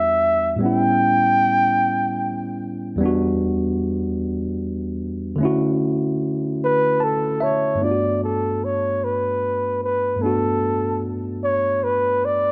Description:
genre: R&B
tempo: 50 BPM (dotted quarters)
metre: 6/8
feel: straight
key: unclear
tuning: A4 = 440 Hz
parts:
  - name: breathy flugelhorn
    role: melody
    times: 0.0-2.6, 6.6-12.5 s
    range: A4 to G5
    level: -22 LUFS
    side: equal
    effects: none
  - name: tine electric piano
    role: accompaniment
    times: 0.0-12.5 s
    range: E2 to A5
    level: -25 LUFS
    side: equal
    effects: none
room: moderate echo chamber reverb, RT60 1.8 s, studio reverb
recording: none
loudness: -21 LUFS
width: mono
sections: 0.0-7.8 A section; 7.8-12.5 B section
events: tine electric piano fill 6.6-7.8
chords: 0.0 Em9; 0.6 A7; 3.0 Em9; 5.4 Dmaj9; 7.8 Gmaj9

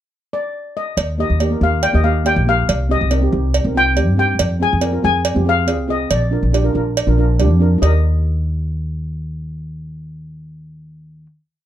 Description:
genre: calypso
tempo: 140 BPM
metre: 4/4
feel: straight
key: Eb major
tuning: A4 = 439 Hz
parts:
  - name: steel pan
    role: melody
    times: 0.3-11.3 s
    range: D5 to Ab5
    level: -20 LUFS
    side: left 4 dB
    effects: none
  - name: upright bass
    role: bass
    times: 1.0-11.3 s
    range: Bb1 to G2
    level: -17 LUFS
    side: equal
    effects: none
  - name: cowbell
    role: percussion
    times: 1.0-8.0 s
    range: none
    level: -22 LUFS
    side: right 6 dB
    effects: none
  - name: steel pan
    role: accompaniment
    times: 1.2-11.3 s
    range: Bb3 to Bb4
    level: -21 LUFS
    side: right 2 dB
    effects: none
room: light reverb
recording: none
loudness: -14 LUFS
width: side -11 dB against mid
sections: 0.0-1.0 pickup bar; 1.0-7.8 verse; 7.8-11.2 final chord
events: none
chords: 0.0 N.C.; 1.0 Eb; 2.7 Cm; 4.4 Fm; 6.1 Bb; 7.8 Eb

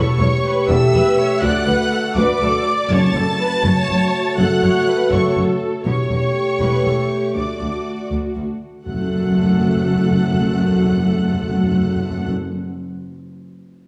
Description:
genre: cinematic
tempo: 81 BPM (dotted quarters)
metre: 6/8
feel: straight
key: F# minor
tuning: A4 = 440 Hz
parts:
  - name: clear symphonic violin section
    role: melody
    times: 0.0-12.3 s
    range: C#6 to A6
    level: -28 LUFS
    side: equal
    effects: none
  - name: rich studio violin section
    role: second line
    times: 0.0-12.3 s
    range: C#5 to A5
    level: -30 LUFS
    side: equal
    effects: none
  - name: rich symphonic viola section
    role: accompaniment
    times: 0.0-12.3 s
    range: A3 to D5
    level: -27 LUFS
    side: equal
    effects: none
  - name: dark French horn section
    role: sustained chords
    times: 0.0-12.3 s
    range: A3 to G4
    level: -24 LUFS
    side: equal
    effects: none
  - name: dark symphonic double bass section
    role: bass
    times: 0.0-12.3 s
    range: E1 to D2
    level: -24 LUFS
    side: equal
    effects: none
  - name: rich symphonic cello section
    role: bass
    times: 0.0-12.3 s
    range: D2 to F#2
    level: -23 LUFS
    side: equal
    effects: none
  - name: timpani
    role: percussion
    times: 2.9-3.6, 8.9-12.3 s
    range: F#2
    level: -29 LUFS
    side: equal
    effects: none
room: wet scoring stage reverb, RT60 1.5 s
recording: none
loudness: -18 LUFS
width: mono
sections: 0.0-8.9 A section; 8.9-11.8 B section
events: none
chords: 0.0 A7/E; 1.4 D; 2.9 F#m; 5.8 A7/E; 7.3 D; 8.9 F#m

